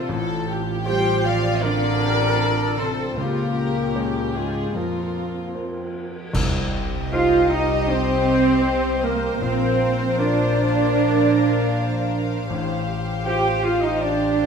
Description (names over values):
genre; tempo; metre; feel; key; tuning
cinematic, emotional film score for orchestra; 78 BPM; 4/4; rubato; unclear; A4 = 440 Hz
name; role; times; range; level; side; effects
warm symphonic violin section; melody; 0.0-14.5 s; Ab4 to G5; -31 LUFS; left 4 dB; none
small flute group; second line; 0.0-14.5 s; F4 to G5; -27 LUFS; left 1 dB; none
warm symphonic violin section; second line; 0.0-14.5 s; F4 to C5; -29 LUFS; left 3 dB; none
dark symphonic viola section; accompaniment; 0.0-14.5 s; Bb3 to G4; -25 LUFS; right 5 dB; none
warm grand piano; accompaniment; 0.0-14.5 s; A1 to Db5; -29 LUFS; left 1 dB; none
warm French horn section; sustained chords; 0.0-14.5 s; Ab3 to G4; -26 LUFS; left 4 dB; none
rich symphonic double bass section; bass; 0.0-14.5 s; A1 to F2; -26 LUFS; right 3 dB; none
warm symphonic cello section; bass; 0.0-14.5 s; Ab2 to G4; -29 LUFS; right 3 dB; none
cymbal swell, clash cymbals and concert bass drum; percussion; 3.2-7.9 s; none; -30 LUFS; equal; none
warm clarinet; second line; 7.1-14.5 s; Bb4 to G5; -30 LUFS; equal; none
room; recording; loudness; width
moderate scoring stage reverb, RT60 1.7 s; minimal, uncompressed stereo recording; -19 LUFS; side -6 dB against mid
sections
0.0-6.3 A section; 6.3-14.5 B section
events
band accent 6.3-7.1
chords
0.1 Fadd9/A; 3.2 Db; 4.8 Fsus4; 6.3 Cm; 9.4 Bbadd9; 12.5 Fadd9/A